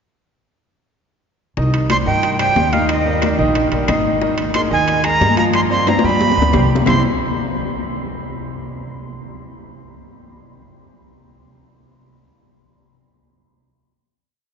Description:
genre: latin, salsa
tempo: 181 BPM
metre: 4/4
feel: straight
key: C minor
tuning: A4 = 440 Hz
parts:
  - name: bright grand piano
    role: accompaniment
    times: 1.6-7.0 s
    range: C3 to G5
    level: -22 LUFS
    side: right 1 dB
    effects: none
  - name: upright bass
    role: bass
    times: 1.6-7.0 s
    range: Ab1 to G2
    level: -21 LUFS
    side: equal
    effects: none
  - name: bongos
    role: percussion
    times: 1.6-6.9 s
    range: none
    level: -26 LUFS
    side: left 4 dB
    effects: none
  - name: congas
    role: percussion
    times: 1.6-6.9 s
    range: none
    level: -25 LUFS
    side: left 5 dB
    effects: none
  - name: timbales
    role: percussion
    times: 1.7-6.9 s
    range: none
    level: -25 LUFS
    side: right 1 dB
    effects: none
  - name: breathy bright jazz flute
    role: melody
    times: 1.9-7.0 s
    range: Eb5 to C6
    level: -19 LUFS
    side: right 2 dB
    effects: none
  - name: claves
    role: percussion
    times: 1.9-6.9 s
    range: none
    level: -31 LUFS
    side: left 6 dB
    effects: none
room: wet cathedral reverb, RT60 6.7 s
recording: recorded in a church or concert hall, nothing above 7.5 kHz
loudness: -14 LUFS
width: side -6 dB against mid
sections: 1.6-6.9 verse; 6.9-8.2 final chord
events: drum fill 5.9-6.9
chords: 1.6 Cm; 2.9 Eb; 4.2 Absus2; 5.5 G7sus4; 6.2 G; 6.9 C5

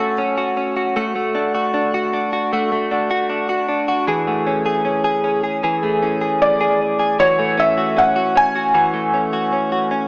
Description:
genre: dream pop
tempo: 77 BPM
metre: 4/4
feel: straight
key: unclear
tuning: A4 = 439 Hz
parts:
  - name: felt-muted upright piano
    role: melody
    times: 0.0-0.1, 6.4-10.1 s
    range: A4 to G#5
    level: -19 LUFS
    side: equal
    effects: analog delay
  - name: direct-recorded clean electric guitar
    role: arpeggios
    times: 0.0-10.1 s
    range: E3 to G#4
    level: -20 LUFS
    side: equal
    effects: analog chorus, analog delay
room: wet spring reverb, RT60 1.4 s, small room ambience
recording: echo-heavy mix, small speaker sound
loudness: -18 LUFS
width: mono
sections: 0.0-10.1 A section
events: none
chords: 0.0 Dmaj7 (rootless); 1.0 D/A; 4.1 Amaj7; 7.2 F#m7

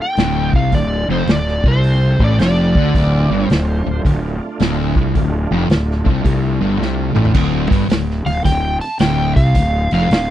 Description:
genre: blues rock power trio and southern rock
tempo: 109 BPM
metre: 4/4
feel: swing 66% on 8ths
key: D minor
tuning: A4 = 440 Hz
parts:
  - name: overdriven slide guitar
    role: melody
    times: 0.0-4.0, 8.3-10.3 s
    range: C5 to A5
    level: -21 LUFS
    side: equal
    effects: none
  - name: overdriven tonewheel organ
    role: sustained chords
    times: 0.0-7.3 s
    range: A3 to A4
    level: -28 LUFS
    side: right 4 dB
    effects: chorus vibrato, fast rotary speaker
  - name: fuzz guitar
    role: riff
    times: 0.2-10.3 s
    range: D2 to D3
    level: -17 LUFS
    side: equal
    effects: distortion
  - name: fuzz fingered electric bass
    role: bass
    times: 0.2-10.3 s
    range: D1 to D2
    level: -19 LUFS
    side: equal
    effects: overdrive
  - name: vintage drum kit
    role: drums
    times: 0.2-10.3 s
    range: crash cymbal, hi-hat, kick drum, snare drum, toms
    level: -17 LUFS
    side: equal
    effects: none
room: little or no reverb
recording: dry, close 1970s-style studio recording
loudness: -13 LUFS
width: side -12 dB against mid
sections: 0.0-7.3 A section; 7.3-10.3 A section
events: drum fill 6.8-7.3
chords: 0.0 Dm

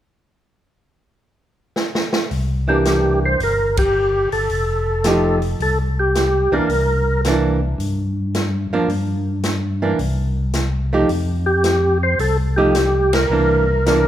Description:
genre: soul jazz organ trio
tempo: 109 BPM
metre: 4/4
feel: swing 68% on 8ths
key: C mixolydian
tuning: A4 = 440 Hz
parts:
  - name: swinging big-band drum kit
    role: drums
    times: 1.8-14.0 s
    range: hi-hat, kick drum, ride cymbal, snare drum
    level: -24 LUFS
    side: right 1 dB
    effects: none
  - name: tonewheel organ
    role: bass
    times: 2.3-14.1 s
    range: F1 to G2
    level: -20 LUFS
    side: left 1 dB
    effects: slow rotary speaker
  - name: percussive tonewheel organ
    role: melody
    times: 2.7-7.2, 11.5-14.1 s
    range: G4 to C5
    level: -18 LUFS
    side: equal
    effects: slow rotary speaker, overdrive, chorus vibrato
  - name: archtop guitar, miked and amplified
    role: accompaniment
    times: 2.7-14.1 s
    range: E3 to G4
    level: -20 LUFS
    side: right 2 dB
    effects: none
room: moderate recital hall reverb, RT60 1.5 s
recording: recorded in a church or concert hall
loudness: -16 LUFS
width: side -11 dB against mid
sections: 0.1-2.3 A section; 2.3-14.1 B section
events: drum fill 1.8-2.3; band accent 3.7, 13.0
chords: 0.1 N.C.; 2.3 C9; 4.5 F9; 6.7 C9; 8.9 Gm; 10.0 Fsus2; 13.3 C9

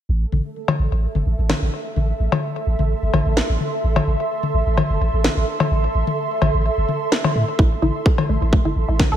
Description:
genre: minimal techno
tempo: 128 BPM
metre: 4/4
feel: straight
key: A minor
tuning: A4 = 440 Hz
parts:
  - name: punchy sub bass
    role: bass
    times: 0.1-9.2 s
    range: G1 to A2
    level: -20 LUFS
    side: equal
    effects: sidechain pumping
  - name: bubbling stepped-filter texture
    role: texture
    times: 0.1-9.2 s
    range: A3 to A4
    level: -33 LUFS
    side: right 4 dB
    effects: chorus, built-in reverb, sidechain pumping
  - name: ethereal airy pad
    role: texture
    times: 0.9-9.2 s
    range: A4 to C6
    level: -26 LUFS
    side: right 2 dB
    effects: ensemble chorus, built-in reverb, sidechain pumping
  - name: electronic toms and cowbell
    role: percussion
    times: 0.3-9.1 s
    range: none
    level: -23 LUFS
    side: left 5 dB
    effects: studio reverb, ping-pong delay
  - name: electronic snare drum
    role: drums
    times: 1.5-9.1 s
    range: none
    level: -23 LUFS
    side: right 1 dB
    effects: studio reverb
  - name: resonant blip pluck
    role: riff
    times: 7.6-9.2 s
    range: A3 to A4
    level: -24 LUFS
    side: right 1 dB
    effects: chorus, phaser, sidechain pumping, tape echo
  - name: electronic kick drum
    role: drums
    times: 7.6-9.1 s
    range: none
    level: -16 LUFS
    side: equal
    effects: studio reverb
room: light reverb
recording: none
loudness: -17 LUFS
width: side -10 dB against mid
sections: 0.1-9.2 A section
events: filter sweep on sub bass 0.1-9.2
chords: 0.1 Am

